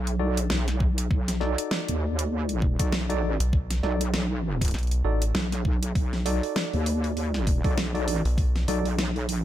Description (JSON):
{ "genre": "glitch hop", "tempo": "99 BPM", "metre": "4/4", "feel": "swing 58% on 16ths", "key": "unclear", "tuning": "A4 = 437 Hz", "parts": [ { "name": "wobble bass", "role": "bass", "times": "0.0-9.4 s", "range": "B1 to D#2", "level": "-26 LUFS", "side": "equal", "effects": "chorus" }, { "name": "dubstep drum kit", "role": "drums", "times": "0.1-9.4 s", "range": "hi-hat, snare drum", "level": "-31 LUFS", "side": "equal", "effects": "none" }, { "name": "tine electric piano", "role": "stabs", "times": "0.2-8.9 s", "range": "D#4 to D5", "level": "-32 LUFS", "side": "equal", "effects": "overdrive, medium stereo tremolo, sidechain pumping, dub echo" }, { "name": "electronic kick drum", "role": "drums", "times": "0.8-8.5 s", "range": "none", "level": "-24 LUFS", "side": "equal", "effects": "none" }, { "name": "rubbery square bass", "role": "bass", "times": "3.4-8.7 s", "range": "A1 to B1", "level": "-24 LUFS", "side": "equal", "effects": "none" } ], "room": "little or no reverb", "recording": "none", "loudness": "-23 LUFS", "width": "side -12 dB against mid", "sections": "0.0-9.4 A section", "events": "none", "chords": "0.0 B7#9" }